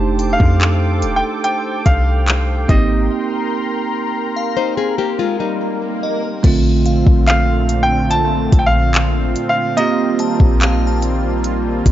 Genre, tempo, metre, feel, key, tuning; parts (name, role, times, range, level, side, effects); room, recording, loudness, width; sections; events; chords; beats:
contemporary R&B; 72 BPM; 4/4; straight; Bb major; A4 = 440 Hz
clear baby grand piano; melody; 0.0-11.9 s; Eb5 to A5; -20 LUFS; equal; digital delay
bell-like tine electric piano; accompaniment; 0.0-11.9 s; D3 to G4; -21 LUFS; right 6 dB
warm analog pad; sustained chords; 0.0-11.9 s; Bb2 to D6; -23 LUFS; left 1 dB; chorus
clean 808-style bass; bass; 0.0-11.9 s; Eb1 to F2; -16 LUFS; left 1 dB
smooth R&B drum kit; drums; 0.2-11.9 s; crash cymbal, handclaps, hi-hat, kick drum; -16 LUFS; equal
glassy synth bell; texture; 0.2-11.9 s; Eb5 to C6; -29 LUFS; left 2 dB; chorus, digital delay
swell; sound effects; 5.1-6.4 s; -29 LUFS; right 1 dB
nylon-string guitar; arpeggios; 4.6-6.4 s; G3 to C5; -19 LUFS; left 8 dB; digital delay
digital ambience; nothing above 7.5 kHz; -14 LUFS; side -12 dB against mid
0.0-6.4 A section; 6.4-11.9 B section
break 3.1-6.4; swell 5.1-6.4
0.0 F13; 2.7 Abmaj9; 6.4 Bbmaj9; 9.8 Eb69
0.61 1.44 2.27 | 3.11 3.94 4.78 5.61 | 6.44 7.28 8.11 8.94 | 9.78 10.61 11.44